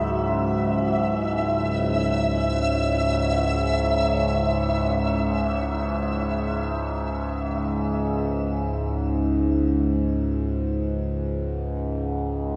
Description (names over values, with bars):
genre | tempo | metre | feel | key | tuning
dark ambient drone | free time | none | none | C# minor | A4 = 445 Hz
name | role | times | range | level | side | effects
deep dark ambient pad | sustained chords | 0.0-8.2 s | C#4 to E5 | -34 LUFS | equal | chorus, built-in reverb, shimmer reverb
overtone-sweeping drone | drone | 0.0-12.6 s | C#2 to G#2 | -25 LUFS | equal | chorus, built-in reverb
flickering grainy texture | texture | 0.0-8.2 s | E5 | -30 LUFS | equal | built-in reverb, shimmer reverb
room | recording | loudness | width
wet cathedral reverb, RT60 5.2 s | nothing above 10.4 kHz | -24 LUFS | mono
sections
0.0-8.2 A section; 8.2-12.6 B section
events
fade-out on ambient pad 0.0-8.2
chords
0.0 C#m; 8.2 C#5